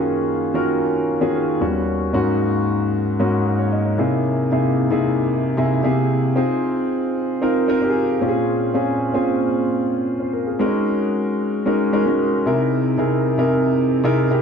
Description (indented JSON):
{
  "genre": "pop",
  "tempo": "113 BPM",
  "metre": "4/4",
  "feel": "straight",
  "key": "unclear",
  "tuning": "A4 = 440 Hz",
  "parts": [
    { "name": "dark baby grand piano", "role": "solo", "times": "0.0-14.4 s", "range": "Eb2 to Eb5", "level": "-17 LUFS", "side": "equal", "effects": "wide subtle chorus" }
  ],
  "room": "moderate lush hall reverb, RT60 2.0 s",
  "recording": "dark, warm production",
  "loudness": "-17 LUFS",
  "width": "side -6 dB against mid",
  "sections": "0.0-2.1 A section; 2.1-14.4 B section",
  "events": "none",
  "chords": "0.0 Ebm11; 1.6 Eb7alt; 2.1 Ab9sus4; 4.0 C7alt; 5.8 C7b13; 6.4 Fm7; 8.2 Bbm7; 10.6 Ab9sus4; 12.5 C7alt"
}